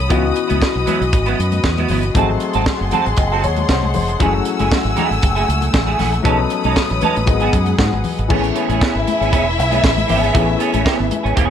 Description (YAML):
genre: disco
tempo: 117 BPM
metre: 4/4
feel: straight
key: unclear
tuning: A4 = 441 Hz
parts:
  - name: semi-hollow electric guitar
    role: accompaniment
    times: 0.0-11.5 s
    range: F#3 to A4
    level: -22 LUFS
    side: right 7 dB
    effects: ensemble chorus
  - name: clear symphonic string section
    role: sustained chords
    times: 0.0-8.3 s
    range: A3 to E6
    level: -22 LUFS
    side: left 2 dB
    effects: none
  - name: fingered electric bass with an envelope filter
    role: bass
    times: 0.0-11.5 s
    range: E1 to G#2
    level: -20 LUFS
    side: equal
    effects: none
  - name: warm grand piano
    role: accompaniment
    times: 0.1-11.5 s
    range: E3 to F#5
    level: -22 LUFS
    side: left 8 dB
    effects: none
  - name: tight funk drum kit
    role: drums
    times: 0.1-11.5 s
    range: crash cymbal, hi-hat, kick drum, snare drum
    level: -19 LUFS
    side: right 1 dB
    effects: none
  - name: congas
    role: percussion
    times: 0.1-11.5 s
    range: none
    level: -26 LUFS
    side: left 6 dB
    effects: none
  - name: warm studio violin section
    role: second line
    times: 8.3-11.5 s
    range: E4 to E5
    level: -20 LUFS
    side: left 2 dB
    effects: none
room: studio reverb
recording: none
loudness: -14 LUFS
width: side -9 dB against mid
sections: 0.0-8.3 A section; 8.3-11.5 B section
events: grand piano fill 2.7-4.2, 6.8-8.3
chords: 0.1 C#m11; 2.2 G#7b9; 4.2 F#m9; 6.2 B9; 7.3 G#m7; 8.3 Amaj9